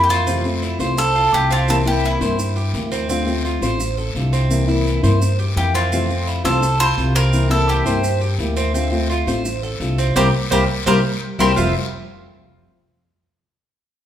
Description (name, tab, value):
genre	latin, Cuban son and guajira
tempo	170 BPM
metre	4/4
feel	straight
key	F major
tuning	A4 = 440 Hz
part	bowl-back mandolin	melody	0.0-2.9, 5.6-11.5 s	E4 to C5	-20 LUFS	equal	none
part	nylon-string guitar	accompaniment	0.0-11.7 s	F2 to F4	-23 LUFS	left 3 dB	none
part	Cuban tres	arpeggios	0.0-11.7 s	C4 to E5	-25 LUFS	right 4 dB	none
part	upright bass	bass	0.0-11.7 s	F1 to G2	-20 LUFS	equal	none
part	guiro	percussion	0.1-11.7 s	none	-32 LUFS	left 5 dB	none
part	maracas	percussion	0.1-11.7 s	none	-33 LUFS	right 4 dB	none
room	wet large studio reverb, RT60 1.4 s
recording	band playing live in one room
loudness	-16 LUFS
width	side -10 dB against mid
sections	0.3-11.6 A section; 11.6-13.0 B section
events	band accent 10.2-11.6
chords	0.3 Fmaj7; 1.7 C7; 3.1 Dm7; 4.5 C7; 5.9 Fmaj7; 7.3 C7; 8.7 Dm7; 10.2 C7; 11.6 Fmaj7(no3)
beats	| 0.27 0.62 0.98 1.33 | 1.68 2.04 2.39 2.74 | 3.10 3.45 3.80 4.16 | 4.51 4.86 5.21 5.57 | 5.92 6.27 6.63 6.98 | 7.33 7.69 8.04 8.39 | 8.75 9.10 9.45 9.80 | 10.16 10.51 10.86 11.22 | 11.57